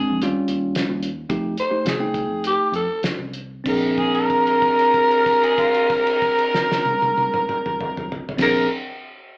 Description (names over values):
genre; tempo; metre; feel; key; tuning
straight-eighth soul blues; 94-115 BPM; 4/4; straight; Bb mixolydian; A4 = 443 Hz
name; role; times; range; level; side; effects
mellow harmonica; second line; 0.0-0.2, 4.0-8.7 s; F4 to Bb4; -21 LUFS; right 1 dB; overdrive
bell-like tine electric piano; accompaniment; 0.0-8.7 s; G3 to G5; -24 LUFS; equal; none
vintage muted picked electric bass; bass; 0.0-8.7 s; Bb1 to F2; -32 LUFS; equal; none
cloth-damped thuddy drum kit; drums; 0.2-8.5 s; crash cymbal, hi-hat, kick drum, snare drum, toms; -27 LUFS; equal; none
growling tenor saxophone; melody; 1.6-8.7 s; G4 to C5; -20 LUFS; equal; none
room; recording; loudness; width
moderate large studio reverb, RT60 0.9 s; band playing live in one room, AM radio sound; -17 LUFS; side -26 dB against mid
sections
0.0-3.7 A section; 3.7-8.8 B section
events
slowing down 0.0-3.7; held note 3.7-8.4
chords
0.2 Eb9; 1.3 F9; 3.7 Bb9